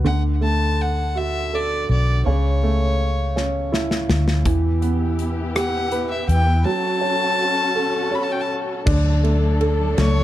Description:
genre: six-eight pop ballad.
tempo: 54 BPM (dotted quarters).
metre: 6/8.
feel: straight.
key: unclear.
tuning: A4 = 440 Hz.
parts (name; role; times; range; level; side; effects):
clear upright piano; accompaniment; 0.0-10.2 s; C#3 to C#5; -24 LUFS; right 3 dB; none.
vintage muted fingered electric bass; bass; 0.0-10.2 s; B1 to E2; -20 LUFS; equal; none.
warm violin; melody; 0.1-10.2 s; C#5 to B5; -24 LUFS; left 2 dB; tape echo.
modern studio drum kit; drums; 3.4-10.2 s; crash cymbal, hi-hat, kick drum, ride cymbal, rim click, snare drum; -24 LUFS; left 1 dB; none.
warm studio string section; sustained chords; 4.5-10.2 s; F#3 to A4; -27 LUFS; left 4 dB; none.
room: studio reverb.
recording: dark, warm production.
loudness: -18 LUFS.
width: side -13 dB against mid.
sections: 0.0-8.9 A section; 8.9-10.2 B section.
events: drum fill 3.4-4.5.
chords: 0.0 D; 2.3 A/C#; 4.5 Em; 6.7 F#m; 8.9 Dmaj7.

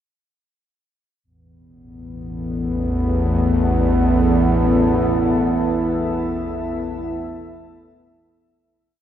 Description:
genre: dark ambient drone.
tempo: free time.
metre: none.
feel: none.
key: unclear.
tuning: A4 = 443 Hz.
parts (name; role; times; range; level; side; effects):
deep dark ambient pad; sustained chords; 2.0-8.6 s; B3 to E5; -22 LUFS; equal; chorus, built-in reverb, shimmer reverb.
bowed-like drone; drone; 2.3-8.7 s; A1 to E2; -19 LUFS; equal; built-in reverb.
quartz singing bowl; texture; 4.9-8.7 s; E4; -28 LUFS; left 1 dB; none.
room: moderate huge ambient reverb, RT60 9.2 s.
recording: none.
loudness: -17 LUFS.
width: side -10 dB against mid.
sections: 1.2-8.6 A section.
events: filter sweep on synth drone 1.2-8.6; fade-out 4.9-8.6.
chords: 1.2 Asus2.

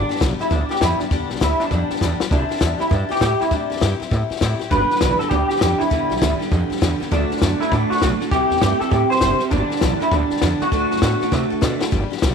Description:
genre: rockabilly.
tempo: 200 BPM.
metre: 4/4.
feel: swing 64% on 8ths.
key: G major.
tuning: A4 = 438 Hz.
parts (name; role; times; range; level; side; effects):
electric guitar through a small old amp; melody; 0.0-11.6 s; D4 to C5; -21 LUFS; equal; ensemble chorus, tape echo.
picked steel-string acoustic guitar; accompaniment; 0.0-12.3 s; G2 to A4; -28 LUFS; left 10 dB; none.
upright bass; bass; 0.0-12.3 s; F#1 to C3; -22 LUFS; right 1 dB; none.
compact cocktail drum kit; drums; 0.1-12.3 s; hi-hat, kick drum, snare drum; -23 LUFS; left 3 dB; none.
electric guitar through a small old amp; riff; 4.7-11.9 s; G2 to B3; -24 LUFS; right 16 dB; none.
room: light reverb, small room ambience.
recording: 1960s-style stereo with parts hard left and right.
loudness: -17 LUFS.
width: side -6 dB against mid.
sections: 0.0-11.9 A section.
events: drum fill 2.0-2.3, 11.3-11.9.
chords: 0.0 G; 2.3 C; 4.7 G; 7.1 D; 8.3 C; 9.5 G; 10.7 D.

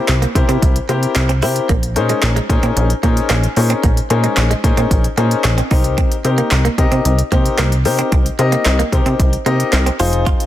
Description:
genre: dance-pop.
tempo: 112 BPM.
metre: 4/4.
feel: straight.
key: unclear.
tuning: A4 = 441 Hz.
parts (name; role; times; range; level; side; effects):
warm grand piano; accompaniment; 0.0-10.4 s; C4 to Eb5; -19 LUFS; left 5 dB; sidechain pumping.
direct-recorded clean electric guitar; riff; 0.0-10.4 s; Ab3 to F4; -24 LUFS; right 7 dB; lush chorus.
downlifter; sound effects; 0.0-1.7 s; none; -41 LUFS; right 2 dB; none.
plucky analog bass; bass; 0.1-10.3 s; F1 to C3; -16 LUFS; equal; sidechain pumping.
deep house drum kit; drums; 0.1-10.5 s; handclaps, hi-hat, kick drum, snare drum; -17 LUFS; equal; none.
room: light reverb, digital ambience.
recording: dense, heavily limited modern master.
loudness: -13 LUFS.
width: side -13 dB against mid.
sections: 0.0-10.5 A section.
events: none.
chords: 0.0 C7; 1.7 Bbm11; 5.7 Cm7.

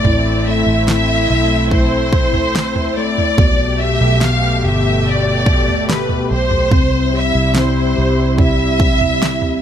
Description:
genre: pop ballad.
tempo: 72 BPM.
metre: 4/4.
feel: straight.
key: C major.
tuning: A4 = 439 Hz.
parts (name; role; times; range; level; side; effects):
warm studio violin section; melody; 0.0-9.6 s; B4 to F5; -18 LUFS; equal; none.
tine electric piano; accompaniment; 0.0-9.6 s; B2 to G4; -20 LUFS; left 4 dB; medium tremolo.
warm analog pad; sustained chords; 0.0-9.6 s; B2 to G4; -22 LUFS; right 2 dB; chorus.
vintage muted fingered electric bass; bass; 0.0-9.6 s; G1 to C2; -19 LUFS; equal; none.
pop drum kit; drums; 0.0-9.6 s; kick drum, snare drum, toms; -16 LUFS; right 1 dB; none.
room: little or no reverb.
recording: none.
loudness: -12 LUFS.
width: side -9 dB against mid.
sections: 0.0-9.6 A section.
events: none.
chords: 0.0 Am; 3.4 Gadd9; 6.7 C.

